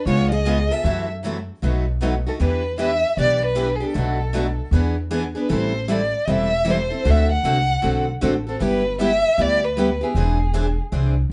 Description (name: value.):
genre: acoustic string swing (jazz manouche).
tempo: 155 BPM.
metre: 4/4.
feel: swing 63% on 8ths.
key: E minor.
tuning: A4 = 442 Hz.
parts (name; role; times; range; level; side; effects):
warm violin; melody; 0.0-10.8 s; G#4 to F#5; -24 LUFS; equal; none.
picked steel-string acoustic guitar; second line; 0.0-1.1 s; E#4 to A4; -31 LUFS; equal; none.
picked steel-string acoustic guitar; accompaniment; 0.1-11.1 s; B2 to A4; -26 LUFS; equal; none.
picked steel-string acoustic guitar; accompaniment; 0.1-11.1 s; B2 to B#4; -34 LUFS; equal; none.
upright bass; bass; 0.1-11.3 s; E1 to F#2; -25 LUFS; equal; none.
room: moderate studio reverb, RT60 0.6 s.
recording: band playing live in one room, nothing above 10.6 kHz.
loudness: -21 LUFS.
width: mono.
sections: 0.0-2.4 A section; 2.4-11.3 B section.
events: none.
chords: 0.1 C#7; 0.9 F#m7b5; 1.6 B7; 2.4 Em7; 4.0 Bm7; 4.7 E7; 5.5 Am7; 7.1 D7; 8.6 G6; 10.2 Eaug7.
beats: 0.07 0.46 | 0.85 1.24 1.63 2.02 | 2.40 2.79 3.18 3.57 | 3.96 4.34 4.73 5.12 | 5.51 5.89 6.28 6.67 | 7.05 7.44 7.83 8.22 | 8.60 8.99 9.38 9.76 | 10.15 10.54 10.92 11.31.